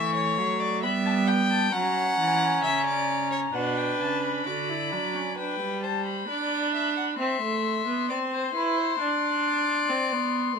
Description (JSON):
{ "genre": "classical, baroque-style fugue for string quartet", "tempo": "66 BPM", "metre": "4/4", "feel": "straight", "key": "G major from 5.4 s", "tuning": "A4 = 440 Hz", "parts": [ { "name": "dark violin", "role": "melody", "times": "0.0-10.6 s", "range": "F#5 to C#6", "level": "-29 LUFS", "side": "left 9 dB", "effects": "none" }, { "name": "rich violin", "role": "second line", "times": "0.0-10.6 s", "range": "B4 to G5", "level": "-29 LUFS", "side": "left 1 dB", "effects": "none" }, { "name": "rich viola", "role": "accompaniment", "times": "0.0-10.6 s", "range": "G3 to F#4", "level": "-28 LUFS", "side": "right 4 dB", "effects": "none" }, { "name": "rich cello", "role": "bass", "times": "0.0-5.4 s", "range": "B2 to G3", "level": "-30 LUFS", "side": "right 5 dB", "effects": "none" } ], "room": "light reverb", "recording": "minimal, uncompressed stereo recording", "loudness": "-23 LUFS", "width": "side -6 dB against mid", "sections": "0.0-5.4 A section; 5.4-10.6 B section", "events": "none", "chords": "0.0 Em; 1.7 F#7; 3.5 Bm; 5.4 G; 7.2 C; 9.0 D5", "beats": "0.83 | 1.73 2.63 3.55 4.47 | 5.38 6.29 7.20 8.10 | 9.00 9.90" }